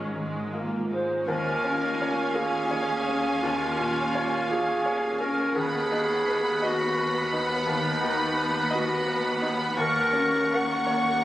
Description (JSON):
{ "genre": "cinematic, emotional film score for orchestra", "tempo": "56 BPM (dotted quarters)", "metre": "6/8", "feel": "rubato", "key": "unclear", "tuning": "A4 = 441 Hz", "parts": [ { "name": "warm clarinet", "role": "second line", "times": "0.0-11.2 s", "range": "D#4 to Gb5", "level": "-28 LUFS", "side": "equal", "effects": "none" }, { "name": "bright concert grand piano", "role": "accompaniment", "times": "0.0-11.2 s", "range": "Eb2 to D#5", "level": "-30 LUFS", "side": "left 1 dB", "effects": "none" }, { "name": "rich studio viola section", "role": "accompaniment", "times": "0.0-11.2 s", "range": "Ab3 to Db4", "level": "-33 LUFS", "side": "right 1 dB", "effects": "none" }, { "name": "concert harp", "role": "arpeggios", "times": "0.0-11.2 s", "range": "Ab2 to F5", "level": "-35 LUFS", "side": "left 2 dB", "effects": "none" }, { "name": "dark studio double bass section", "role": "bass", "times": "0.0-11.2 s", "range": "Ab1 to Eb2", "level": "-41 LUFS", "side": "right 1 dB", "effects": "none" }, { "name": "warm studio cello section", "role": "bass", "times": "0.0-11.2 s", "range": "Eb2 to Ab2", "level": "-36 LUFS", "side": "equal", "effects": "none" }, { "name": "warm studio violin section", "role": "melody", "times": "1.3-11.2 s", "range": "Ab5 to Db6", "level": "-31 LUFS", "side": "right 1 dB", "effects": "none" }, { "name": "dark studio violin section", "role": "second line", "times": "1.3-11.2 s", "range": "F5 to F#5", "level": "-34 LUFS", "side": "right 1 dB", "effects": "none" } ], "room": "wet stone room reverb, RT60 1.3 s", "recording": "recorded on a phone in the room, studio reverb", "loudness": "-23 LUFS", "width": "side -14 dB against mid", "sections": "0.0-1.3 A section; 1.3-11.2 B section", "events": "none", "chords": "0.0 Dbadd9/Ab (rootless); 1.3 Db6/Eb; 5.6 B/D#; 9.8 Gb/Eb" }